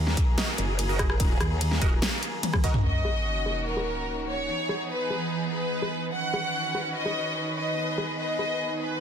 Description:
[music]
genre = heavy wobble dubstep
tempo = 146 BPM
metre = 4/4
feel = half-time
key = Eb phrygian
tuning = A4 = 445 Hz
[part]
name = rich studio string section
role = sustained chords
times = 0.0-9.0 s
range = Eb3 to B4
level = -34 LUFS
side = left 1 dB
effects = sidechain pumping, low-pass filter
[part]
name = growl bass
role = bass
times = 0.0-2.0 s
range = Eb1 to Eb2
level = -27 LUFS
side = equal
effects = chorus, overdrive
[part]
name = warbly tape-like pad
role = texture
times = 0.0-9.0 s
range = E3 to B5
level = -36 LUFS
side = right 4 dB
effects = chorus, built-in reverb, sidechain pumping
[part]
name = dubstep drum kit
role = drums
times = 0.1-8.5 s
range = crash cymbal, hi-hat, ride cymbal, rim click, snare drum, toms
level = -29 LUFS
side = equal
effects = soft clipping on snare, low-pass filter on snare, low-pass filter on hats, low-pass filter on cymbals, low-pass filter on toms, low-pass filter on room
[part]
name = electronic kick drum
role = drums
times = 0.2-2.7 s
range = none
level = -25 LUFS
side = equal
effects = none
[part]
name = supersaw stab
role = stabs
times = 0.4-2.7 s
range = Gb4 to Eb5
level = -35 LUFS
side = right 4 dB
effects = phaser, ping-pong delay
[part]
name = warm studio violin section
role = melody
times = 2.8-9.0 s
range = Bb4 to F#5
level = -29 LUFS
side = left 1 dB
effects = ping-pong delay
[part]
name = sub drop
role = sound effects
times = 2.8-4.5 s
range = none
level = -31 LUFS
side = equal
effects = none
[sound]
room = light reverb, digital ambience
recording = dense, heavily limited modern master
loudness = -25 LUFS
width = side -8 dB against mid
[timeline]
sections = 0.0-2.8 A section; 2.8-9.0 B section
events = drop 0.0-2.8; drum fill 2.4-2.8; band accent 2.6; impact 2.8-4.5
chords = 0.0 Ebm; 2.8 Ebm7; 4.5 Emaj7; 6.1 Badd9; 7.8 Abm

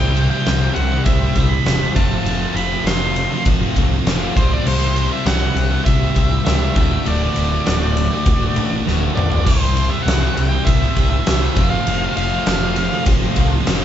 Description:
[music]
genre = quiet-loud alternative rock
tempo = 100 BPM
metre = 4/4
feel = straight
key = unclear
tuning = A4 = 444 Hz
[part]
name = octave-fuzz lead guitar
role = melody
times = 0.0-13.0 s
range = C5 to C6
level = -24 LUFS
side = right 1 dB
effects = distortion
[part]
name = string machine, full ensemble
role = sustained chords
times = 0.6-13.8 s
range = G4 to D6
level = -34 LUFS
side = right 1 dB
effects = none
[part]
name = sludgy distorted guitar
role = riff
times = 0.0-13.8 s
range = D2 to C5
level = -25 LUFS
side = right 6 dB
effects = overdrive
[part]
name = sludgy distorted guitar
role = riff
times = 0.0-13.8 s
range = D2 to C5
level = -24 LUFS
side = left 2 dB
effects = overdrive
[part]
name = thick fuzz guitar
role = riff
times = 0.0-13.8 s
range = D2 to C5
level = -27 LUFS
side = left 6 dB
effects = distortion
[part]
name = growling picked electric bass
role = bass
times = 0.0-13.8 s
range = D1 to C#2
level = -20 LUFS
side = equal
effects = overdrive
[part]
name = huge arena drum kit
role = drums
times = 0.2-13.8 s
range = crash cymbal, kick drum, ride cymbal, snare drum, toms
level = -19 LUFS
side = equal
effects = none
[sound]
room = light reverb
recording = band playing live in one room, nothing above 7.8 kHz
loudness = -15 LUFS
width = side -10 dB against mid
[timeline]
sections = 0.0-9.5 A section; 9.5-13.8 A section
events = drum fill 8.9-9.5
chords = 0.0 C; 2.0 F; 4.4 C; 6.8 D; 9.5 C; 11.6 F

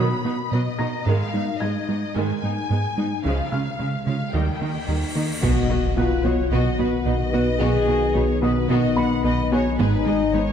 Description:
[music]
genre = cinematic, hybrid orchestral and electronic film score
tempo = 110 BPM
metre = 4/4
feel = straight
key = unclear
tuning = A4 = 437 Hz
[part]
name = warm studio violin section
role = melody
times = 0.0-10.4 s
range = F#4 to B5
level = -32 LUFS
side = left 4 dB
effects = none
[part]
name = warm symphonic viola section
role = accompaniment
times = 0.0-10.4 s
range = D#3 to G#4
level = -30 LUFS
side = right 2 dB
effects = none
[part]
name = glassy wavetable pluck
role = arpeggios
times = 0.0-10.5 s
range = C#3 to B4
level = -31 LUFS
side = equal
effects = chorus
[part]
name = rubbery square bass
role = riff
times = 0.0-10.5 s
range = C#2 to B3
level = -25 LUFS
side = right 2 dB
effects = none
[part]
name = rich symphonic cello section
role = bass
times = 0.0-10.4 s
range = G#2 to D#3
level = -30 LUFS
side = right 3 dB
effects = none
[part]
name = felt-muted upright piano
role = texture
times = 0.0-10.5 s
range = G#4 to A#6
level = -34 LUFS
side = left 2 dB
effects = ping-pong delay
[part]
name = cymbal swell and impact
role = sound effects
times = 4.6-7.6 s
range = none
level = -30 LUFS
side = left 1 dB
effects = none
[part]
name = mellow French horn section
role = sustained chords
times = 4.9-10.5 s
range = D#4 to B4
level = -25 LUFS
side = left 5 dB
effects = none
[part]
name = rich symphonic violin section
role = second line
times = 5.4-10.5 s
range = B4 to F#5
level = -30 LUFS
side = left 4 dB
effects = none
[part]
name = dark trombone section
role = sustained chords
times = 5.4-10.5 s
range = D#3 to B3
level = -30 LUFS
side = left 1 dB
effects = none
[part]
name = dark detuned saw bass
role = bass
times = 5.4-10.5 s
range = G#1 to B1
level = -27 LUFS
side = left 1 dB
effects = none
[part]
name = rich symphonic double bass section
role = bass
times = 5.4-10.4 s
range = G#1 to B1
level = -30 LUFS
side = right 2 dB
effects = none
[sound]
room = moderate concert hall reverb, RT60 1.9 s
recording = dark, warm production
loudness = -19 LUFS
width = side -8 dB against mid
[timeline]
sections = 0.0-5.4 A section; 5.4-10.5 A section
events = cymbal swell 4.6-5.4; impact 5.4-7.6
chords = 0.0 B; 1.1 G#m; 3.2 C#; 4.3 D#; 5.4 B; 9.8 G#m

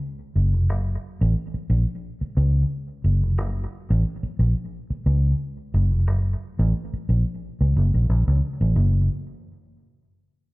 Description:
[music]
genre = funk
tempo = 89 BPM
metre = 4/4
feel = straight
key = unclear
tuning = A4 = 441 Hz
[part]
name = vintage muted fingered electric bass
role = solo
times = 0.4-9.1 s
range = E#1 to C#2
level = -20 LUFS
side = equal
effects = analog delay
[sound]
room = light reverb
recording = dark, warm production, nothing above 7.5 kHz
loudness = -20 LUFS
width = side -22 dB against mid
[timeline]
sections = 0.0-8.8 A section; 8.8-10.5 B section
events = none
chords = none

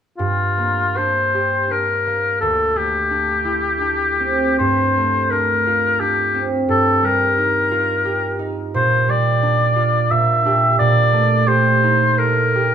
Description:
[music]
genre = classical, impressionist duo for oboe and harp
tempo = 86 BPM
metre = 3/4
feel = rubato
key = G minor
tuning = A4 = 445 Hz
[part]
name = warm oboe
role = melody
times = 0.2-12.7 s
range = F4 to E5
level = -17 LUFS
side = left 2 dB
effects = none
[part]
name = concert harp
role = accompaniment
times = 0.2-12.7 s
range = D2 to A4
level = -20 LUFS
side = right 3 dB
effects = none
[sound]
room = moderate recital hall reverb, RT60 1.6 s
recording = none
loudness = -15 LUFS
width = side -8 dB against mid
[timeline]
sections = 0.2-12.7 A section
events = none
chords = 0.2 Gm7; 2.4 D9sus4; 4.6 Gm11; 6.7 Eb69/G; 8.7 Bb69; 10.1 C9/Bb; 10.8 Ebmaj7#11/Bb

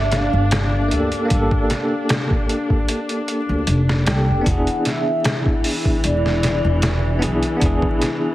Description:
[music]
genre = trip hop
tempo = 76 BPM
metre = 4/4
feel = straight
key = unclear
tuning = A4 = 439 Hz
[part]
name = pure breathy sine lead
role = melody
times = 0.0-7.2 s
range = D5 to G5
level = -27 LUFS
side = right 1 dB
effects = wide subtle chorus, tape echo
[part]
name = bell-like tine electric piano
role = accompaniment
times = 0.0-8.3 s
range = Bb3 to A4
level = -23 LUFS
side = equal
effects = tremolo
[part]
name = dark chamber string section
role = sustained chords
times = 0.0-8.3 s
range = E3 to D4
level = -25 LUFS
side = left 3 dB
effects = none
[part]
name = upright bass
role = bass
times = 0.0-7.8 s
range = E1 to D2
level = -20 LUFS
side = equal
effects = none
[part]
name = trip hop sampler-style drum kit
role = drums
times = 0.1-8.2 s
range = hi-hat, kick drum, snare drum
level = -21 LUFS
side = equal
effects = none
[sound]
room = light reverb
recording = heavily compressed radio sound, vinyl crackle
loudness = -16 LUFS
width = side -15 dB against mid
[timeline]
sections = 0.0-8.3 A section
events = none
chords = 0.0 Gmadd9; 4.5 E7

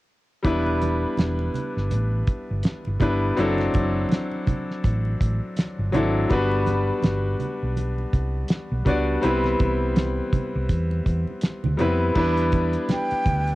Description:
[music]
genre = lush 1970s-style soul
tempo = 82 BPM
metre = 4/4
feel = swing 58% on 16ths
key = unclear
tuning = A4 = 441 Hz
[part]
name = bright concert grand piano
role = accompaniment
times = 0.4-13.6 s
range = F#3 to D5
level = -24 LUFS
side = left 1 dB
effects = cassette tape
[part]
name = cloth-damped thuddy drum kit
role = drums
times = 0.4-13.6 s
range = crash cymbal, hi-hat, kick drum, snare drum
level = -23 LUFS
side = equal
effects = cassette tape
[part]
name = hollow-body short-scale fingered electric bass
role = bass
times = 0.5-13.6 s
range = E1 to F2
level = -25 LUFS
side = equal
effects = none
[part]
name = congas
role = percussion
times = 0.5-13.5 s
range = none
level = -33 LUFS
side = right 5 dB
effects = none
[part]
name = breathy concert flute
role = melody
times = 12.9-13.6 s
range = G5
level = -24 LUFS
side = right 1 dB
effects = cassette tape
[sound]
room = light reverb, small room ambience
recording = home recording on cassette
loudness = -21 LUFS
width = side -18 dB against mid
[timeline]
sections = 0.4-12.2 A section; 12.2-13.6 B section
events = none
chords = 0.4 Em7; 3.4 D9/F#; 6.3 Gmaj7; 9.2 Cmaj7; 12.2 Em7

